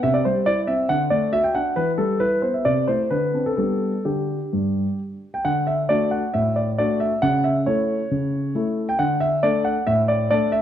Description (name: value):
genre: classical-period piano sonatina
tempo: 136 BPM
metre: 4/4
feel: rubato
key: G major, D major from 5.4 s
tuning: A4 = 440 Hz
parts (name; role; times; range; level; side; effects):
- warm grand piano; solo; 0.0-10.6 s; G2 to G5; -19 LUFS; equal; none
room: moderate recital hall reverb, RT60 1.4 s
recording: dark, warm production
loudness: -19 LUFS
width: side -10 dB against mid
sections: 0.0-5.4 A section; 5.4-10.6 B section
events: none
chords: 0.0 C; 0.9 D; 1.8 Em; 2.6 Am/C; 3.1 Bm7/D; 3.6 G; 5.4 D; 7.2 A/C#; 9.0 D5